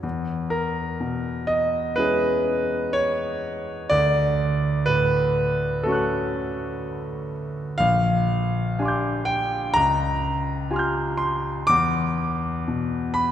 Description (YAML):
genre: classical, impressionist solo piano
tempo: 62 BPM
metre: 4/4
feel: rubato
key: unclear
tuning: A4 = 440 Hz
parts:
  - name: warm concert grand piano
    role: solo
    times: 0.0-13.3 s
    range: Bb1 to G6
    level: -21 LUFS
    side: equal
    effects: none
room: wet church reverb, RT60 3.1 s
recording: recorded in a church or concert hall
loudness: -21 LUFS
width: side -10 dB against mid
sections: 0.0-13.3 A section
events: none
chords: 0.0 E6; 3.9 Dmaj7; 7.8 Bb13; 9.7 Dbmaj7#11; 11.7 E7(no3)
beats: | 0.04 1.02 1.99 2.96 | 3.93 4.88 5.85 6.82 | 7.79 8.79 9.75 10.69 | 11.68 12.66